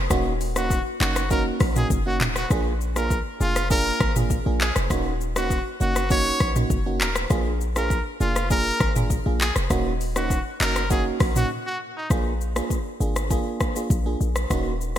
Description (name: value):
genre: afrobeats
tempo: 100 BPM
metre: 4/4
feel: straight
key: unclear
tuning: A4 = 440 Hz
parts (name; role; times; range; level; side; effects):
- warm 808-style bass; bass; 0.0-15.0 s; Eb1 to Bb1; -26 LUFS; equal; none
- FM electric piano; accompaniment; 0.1-15.0 s; Bb3 to Ab4; -28 LUFS; right 3 dB; chorus
- afro-pop drum kit; drums; 0.1-15.0 s; handclaps, hi-hat, kick drum, rim click, shaker, toms; -25 LUFS; equal; gated reverb
- brilliant trumpet; melody; 0.6-12.1 s; Eb4 to Db5; -28 LUFS; equal; ping-pong delay
room: light reverb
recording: bright 1980s-style digital production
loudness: -21 LUFS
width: side -11 dB against mid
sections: 0.0-12.1 A section; 12.1-15.0 B section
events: break 11.5-12.1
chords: 0.1 Ebm7; 2.5 Bb7; 4.9 Ebm7; 7.3 Bb7; 9.7 Ebm7; 12.1 Bb7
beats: | 0.10 0.70 1.30 1.91 | 2.50 3.10 3.71 4.30 | 4.91 5.50 6.11 6.71 | 7.30 7.91 8.51 9.11 | 9.71 10.30 10.90 11.51 | 12.11 12.71 13.30 13.90 | 14.51